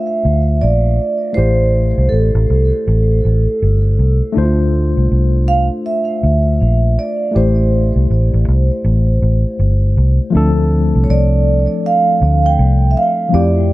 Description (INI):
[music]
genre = lovers rock reggae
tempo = 80 BPM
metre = 4/4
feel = swing 60% on 16ths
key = D minor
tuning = A4 = 440 Hz
[part]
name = vibraphone with soft mallets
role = melody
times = 0.0-13.7 s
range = A4 to G5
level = -18 LUFS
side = right 3 dB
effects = tape echo
[part]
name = tine electric piano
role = accompaniment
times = 0.0-13.7 s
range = F3 to C5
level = -20 LUFS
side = left 3 dB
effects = medium stereo tremolo
[part]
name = vintage muted fingered electric bass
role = bass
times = 0.2-13.7 s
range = G1 to F2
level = -12 LUFS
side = equal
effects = none
[sound]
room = small room ambience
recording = dark, warm production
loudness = -11 LUFS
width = side -18 dB against mid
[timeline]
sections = 0.0-10.3 A section; 10.3-13.7 B section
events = none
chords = 0.0 Dm7; 1.4 Am7; 4.4 Dm7; 7.3 Am7; 10.3 Dm7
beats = 0.61 | 1.36 2.11 2.86 3.60 | 4.35 5.10 5.85 6.60 | 7.34 8.09 8.84 9.59 | 10.33 11.08 11.83 12.57 | 13.32